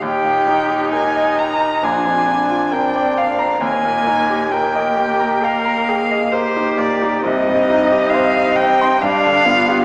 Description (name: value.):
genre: classical, slow romantic movement for piano quartet.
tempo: 67 BPM.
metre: 4/4.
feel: rubato.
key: Eb major.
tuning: A4 = 440 Hz.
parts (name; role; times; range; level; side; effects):
warm violin; melody; 0.0-9.8 s; C5 to Bb5; -17 LUFS; equal; none.
rich cello; second line; 0.0-9.8 s; C4 to Bb4; -22 LUFS; equal; none.
bright grand piano; accompaniment; 0.0-9.8 s; Bb1 to C6; -19 LUFS; equal; none.
warm viola; accompaniment; 0.0-9.8 s; Bb3 to Eb4; -21 LUFS; equal; none.
room: wet concert hall reverb, RT60 2.4 s.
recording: recorded in a church or concert hall, small speaker sound.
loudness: -13 LUFS.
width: side -35 dB against mid.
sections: 0.0-9.8 A section.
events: none.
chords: 0.0 Eb; 1.8 Bb7; 3.6 Eb; 7.2 Cm; 9.0 G7.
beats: | 0.03 0.94 1.83 2.72 | 3.62 4.52 5.43 6.32 | 7.23 8.12 9.01.